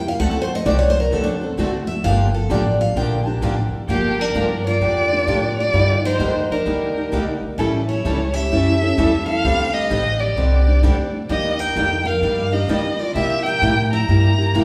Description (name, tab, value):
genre	acoustic string swing (jazz manouche)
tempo	130 BPM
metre	4/4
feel	swing 65% on 8ths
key	G minor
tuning	A4 = 440 Hz
part	picked steel-string acoustic guitar	second line	0.0-14.6 s	Bb3 to Bb5	-27 LUFS	equal	none
part	upright bass	bass	0.0-14.6 s	G1 to D3	-23 LUFS	equal	none
part	picked steel-string acoustic guitar	accompaniment	0.2-14.6 s	C3 to A4	-28 LUFS	equal	none
part	picked steel-string acoustic guitar	accompaniment	0.2-14.6 s	C3 to A4	-28 LUFS	equal	none
part	warm violin	melody	3.9-14.6 s	G4 to Bb5	-23 LUFS	equal	none
room	wet recital hall reverb, RT60 1.7 s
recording	recorded in a church or concert hall, small room ambience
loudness	-19 LUFS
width	mono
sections	0.0-3.9 A section; 3.9-14.6 B section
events	steel-string acoustic guitar solo 0.0-3.9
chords	0.2 D7; 2.0 Gm7; 5.7 Ebmaj9; 7.6 A7; 9.4 D7sus4; 11.3 Ebmaj9; 13.1 C7